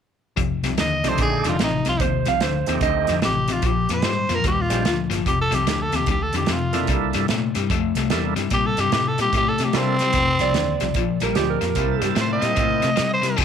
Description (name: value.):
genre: electric blues shuffle.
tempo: 148 BPM.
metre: 4/4.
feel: swing 63% on 8ths.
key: F mixolydian.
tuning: A4 = 440 Hz.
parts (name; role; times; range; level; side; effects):
overdriven electric guitar; riff; 0.4-13.4 s; F2 to A3; -24 LUFS; left 10 dB; none.
vintage muted fingered electric bass; bass; 0.4-13.4 s; F1 to C3; -27 LUFS; right 1 dB; none.
natural country drum kit; drums; 0.4-13.4 s; crash cymbal, hi-hat, kick drum, snare drum; -26 LUFS; right 4 dB; none.
growling tenor saxophone; melody; 0.8-13.4 s; C4 to Eb5; -22 LUFS; equal; none.
tonewheel organ; accompaniment; 1.0-13.4 s; Ab3 to A5; -28 LUFS; right 14 dB; slow rotary speaker, overdrive.
electric slide guitar; second line; 2.0-3.1, 10.4-12.1 s; G4 to F5; -24 LUFS; right 11 dB; none.
room: light reverb, small room ambience.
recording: 1960s-style stereo with parts hard left and right.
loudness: -18 LUFS.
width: side -8 dB against mid.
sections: 0.4-13.4 A section.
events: none.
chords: 0.4 F13; 3.6 Bb13; 5.3 F6; 6.9 C13; 10.1 F5; 11.0 Bb13; 11.8 C6.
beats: | 0.37 0.78 1.19 1.60 | 2.00 2.41 2.82 3.23 | 3.63 4.04 4.45 4.86 | 5.26 5.67 6.08 6.49 | 6.89 7.30 7.71 8.11 | 8.52 8.93 9.33 9.74 | 10.14 10.55 10.96 11.36 | 11.77 12.17 12.58 12.99 | 13.39.